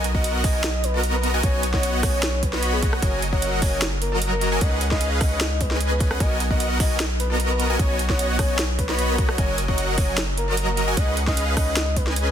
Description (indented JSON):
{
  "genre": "future bass",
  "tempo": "151 BPM",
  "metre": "4/4",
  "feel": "half-time",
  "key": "B major",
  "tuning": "A4 = 441 Hz",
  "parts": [
    { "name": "supersaw chords", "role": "riff", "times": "0.0-12.3 s", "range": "F#3 to B5", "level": "-25 LUFS", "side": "equal", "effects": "sidechain pumping" },
    { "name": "long sustained 808-style bass", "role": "bass", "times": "0.0-12.3 s", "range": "F#1 to C#2", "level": "-25 LUFS", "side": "equal", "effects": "sidechain pumping" },
    { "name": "trap drum kit", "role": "drums", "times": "0.0-12.2 s", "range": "hi-hat, rim click, snare drum", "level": "-27 LUFS", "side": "right 1 dB", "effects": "none" },
    { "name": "soft octave-layered synth lead", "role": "melody", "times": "0.1-12.3 s", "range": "G#4 to D#5", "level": "-29 LUFS", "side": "left 1 dB", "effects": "chorus, tremolo, sidechain pumping, dub echo" },
    { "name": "electronic kick drum", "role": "drums", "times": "0.1-12.0 s", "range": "none", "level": "-23 LUFS", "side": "equal", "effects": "none" }
  ],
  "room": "light reverb",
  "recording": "dense, heavily limited modern master",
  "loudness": "-19 LUFS",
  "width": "side -9 dB against mid",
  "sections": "0.0-12.3 A section",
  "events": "none",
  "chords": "0.0 G#m9/B; 1.4 B69; 3.0 F#69; 4.6 C#9sus4; 6.2 G#m9/B; 7.8 B69; 9.4 F#69; 11.0 C#9sus4",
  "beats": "0.24 0.64 1.04 | 1.44 1.83 2.23 2.63 | 3.02 3.42 3.82 4.22 | 4.62 5.01 5.41 5.81 | 6.20 6.60 7.00 7.40 | 7.79 8.19 8.59 8.98 | 9.38 9.78 10.18 10.57 | 10.97 11.37 11.77 12.16"
}